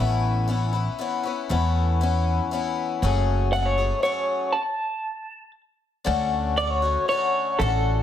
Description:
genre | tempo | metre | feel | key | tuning
folk | 118 BPM | 3/4 | straight | unclear | A4 = 440 Hz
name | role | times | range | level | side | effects
picked twelve-string acoustic guitar | accompaniment | 0.0-8.0 s | F#2 to G#4 | -26 LUFS | left 7 dB | none
upright bass | bass | 0.0-8.0 s | F#1 to E2 | -23 LUFS | right 1 dB | none
electric guitar through a small old amp | melody | 3.5-8.0 s | A4 to A5 | -23 LUFS | equal | tremolo, slapback echo
room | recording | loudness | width
light reverb, studio ambience | none | -21 LUFS | side -10 dB against mid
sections
0.0-6.1 A section; 6.1-8.0 A section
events
stop 4.5-6.1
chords
0.0 Aadd9; 3.0 F#madd9; 6.1 Dmaj7

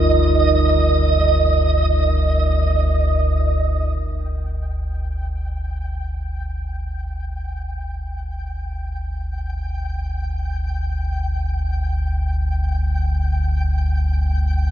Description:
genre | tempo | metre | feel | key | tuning
dark ambient drone | free time | none | none | unclear | A4 = 440 Hz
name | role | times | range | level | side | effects
dark analog pad | sustained chords | 0.0-4.0 s | Eb4 to Bb4 | -26 LUFS | right 2 dB | chorus
deep rumbling drone | drone | 0.0-14.7 s | G1 to D2 | -19 LUFS | equal | built-in reverb, wide subtle chorus
flickering grainy texture | texture | 0.0-14.7 s | Eb5 to G5 | -25 LUFS | right 3 dB | built-in reverb, lush chorus
room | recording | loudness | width
light reverb, digital ambience | none | -18 LUFS | side -11 dB against mid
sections
0.0-4.0 A section; 4.0-14.7 B section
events
fade-in on synth texture 4.0-14.7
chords
0.0 Ebsus2; 4.0 G5

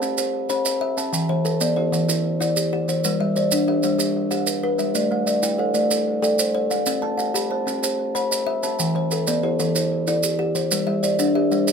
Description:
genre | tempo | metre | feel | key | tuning
southern african traditional, mbira-style interlocking cycle | 125 BPM (dotted quarters) | 12/8 | straight | unclear | A4 = 440 Hz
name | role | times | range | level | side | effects
kalimba | arpeggios | 0.0-11.7 s | E3 to B5-29c | -21 LUFS | left 2 dB | tape echo
kalimba | arpeggios | 0.0-11.7 s | E3 to B5-29c | -25 LUFS | right 4 dB | none
maracas | percussion | 0.0-11.7 s | none | -26 LUFS | right 6 dB | none
room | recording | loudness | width
wet studio reverb, RT60 0.5 s | none | -19 LUFS | side -6 dB against mid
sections
0.0-11.7 A section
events
none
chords
0.0 C; 1.1 Em; 3.0 G; 5.0 Am; 6.9 C; 8.8 Em; 10.7 G

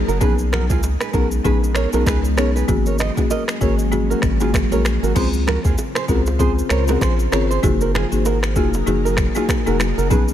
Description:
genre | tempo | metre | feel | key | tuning
afrobeats | 97 BPM | 4/4 | swing 58% on 16ths | unclear | A4 = 438 Hz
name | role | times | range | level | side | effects
ethereal airy pad | sustained chords | 0.0-10.3 s | Db3 to C5 | -27 LUFS | equal | ensemble chorus, built-in reverb, tremolo
round analog bass | bass | 0.0-10.3 s | F1 to Eb2 | -20 LUFS | equal | none
nylon-string guitar | riff | 0.1-10.2 s | F4 to Eb5 | -25 LUFS | right 7 dB | tape echo
afro-pop drum kit | drums | 0.1-10.3 s | crash cymbal, finger snaps, kick drum, rim click, shaker | -21 LUFS | equal | none
folk marimba with medium mallets | accompaniment | 0.2-10.3 s | Bb3 to Ab4 | -22 LUFS | left 6 dB | none
congas and bongos | percussion | 0.2-10.3 s | none | -29 LUFS | right 6 dB | none
room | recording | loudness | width
small room reverb | none | -16 LUFS | side -11 dB against mid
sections
0.0-5.2 A section; 5.2-10.3 B section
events
none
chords
0.2 Cb69; 2.7 Ab9sus4; 7.6 Gb69

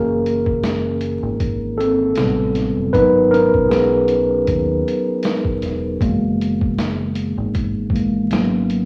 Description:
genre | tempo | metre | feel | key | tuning
lo-fi hip hop | 78 BPM | 4/4 | swing 55% on 16ths | unclear | A4 = 440 Hz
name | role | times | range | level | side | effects
mellow tine electric piano | accompaniment | 0.0-8.9 s | C3 to B4 | -19 LUFS | equal | cassette tape
deep dub fingered electric bass | bass | 0.0-8.8 s | E1 to D#2 | -29 LUFS | equal | none
lo-fi sampler-style drum kit | drums | 0.3-8.9 s | hi-hat, kick drum, snare drum | -26 LUFS | equal | cassette tape
room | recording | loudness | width
light reverb | home recording on cassette, vinyl crackle, studio reverb | -18 LUFS | mono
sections
0.0-8.9 A section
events
tine electric piano solo 0.0-8.9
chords
0.0 F#9; 2.2 Am7; 2.9 G#m7; 6.0 F#9; 8.3 G#m11

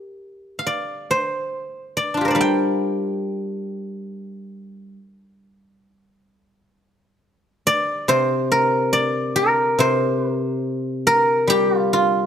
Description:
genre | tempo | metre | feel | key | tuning
chinese traditional, Chinese solo plucked strings | 70 BPM | 4/4 | rubato | G yu mode | A4 = 441 Hz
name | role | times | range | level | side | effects
guzheng | solo | 0.0-12.3 s | C3 to G5 | -18 LUFS | equal | none
room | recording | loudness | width
light reverb | close, detailed microphones | -18 LUFS | side -8 dB against mid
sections
0.0-6.4 A section; 6.4-12.3 B section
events
none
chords
none

